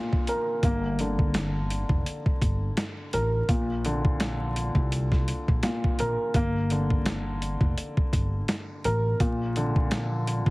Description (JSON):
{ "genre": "hip hop, boom-bap hip-hop", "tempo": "84 BPM", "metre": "4/4", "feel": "swing 57% on 16ths", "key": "G minor", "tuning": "A4 = 440 Hz", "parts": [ { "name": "dark upright piano", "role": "accompaniment", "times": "0.0-10.5 s", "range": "Bb2 to Bb4", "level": "-29 LUFS", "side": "equal", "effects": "high-pass filter, low-pass filter" }, { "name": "boom bap sampler-style drum kit", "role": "drums", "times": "0.1-10.5 s", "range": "hi-hat, kick drum, snare drum", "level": "-26 LUFS", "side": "equal", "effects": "none" }, { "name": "upright bass", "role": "bass", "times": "0.6-10.5 s", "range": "F1 to C2", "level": "-29 LUFS", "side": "equal", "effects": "none" } ], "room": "little or no reverb", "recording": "heavily compressed radio sound, multiband compression, vinyl crackle", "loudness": "-24 LUFS", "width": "side -22 dB against mid", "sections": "0.0-10.5 A section", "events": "break 0.0-0.6", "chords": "0.0 Bb; 0.6 Gm; 3.5 Bb; 6.3 Gm; 9.2 Bb", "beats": "| 0.63 1.34 2.06 2.77 | 3.49 4.20 4.92 5.63 | 6.34 7.06 7.77 8.49 | 9.20 9.92" }